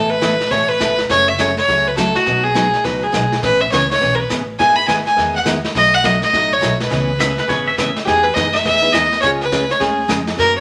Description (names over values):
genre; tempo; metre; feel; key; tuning
country, western swing; 207 BPM; 4/4; swing 62% on 8ths; E major; A4 = 440 Hz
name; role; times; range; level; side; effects
bright fiddle; melody; 0.0-10.6 s; F#4 to B5; -17 LUFS; equal; none
picked steel-string acoustic guitar; accompaniment; 0.0-10.6 s; B2 to A4; -24 LUFS; equal; none
upright bass; bass; 0.0-10.6 s; F#1 to F#2; -29 LUFS; equal; none
jazz brush drum kit; drums; 0.2-10.6 s; brushed snare drum, hi-hat, kick drum, snare drum; -25 LUFS; equal; none
pedal steel guitar; second line; 7.2-8.0 s; B4 to E5; -22 LUFS; equal; none
tack piano; accompaniment; 8.8-9.4 s; G#3 to C#5; -27 LUFS; equal; none
room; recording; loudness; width
moderate studio reverb, RT60 0.9 s; none; -16 LUFS; mono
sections
0.0-10.6 A section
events
none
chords
0.0 Asus2; 1.1 F#m; 2.3 B; 3.4 Aadd9; 4.6 Emaj7/G#; 5.8 B7; 6.9 C#m7; 8.1 Emaj7; 9.2 C#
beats
0.22 0.51 0.80 | 1.09 1.39 1.68 1.97 | 2.26 2.55 2.84 3.13 | 3.43 3.72 4.01 4.30 | 4.59 4.88 5.17 5.46 | 5.75 6.04 6.33 6.62 | 6.91 7.20 7.49 7.78 | 8.07 8.36 8.65 8.94 | 9.23 9.52 9.80 10.10 | 10.38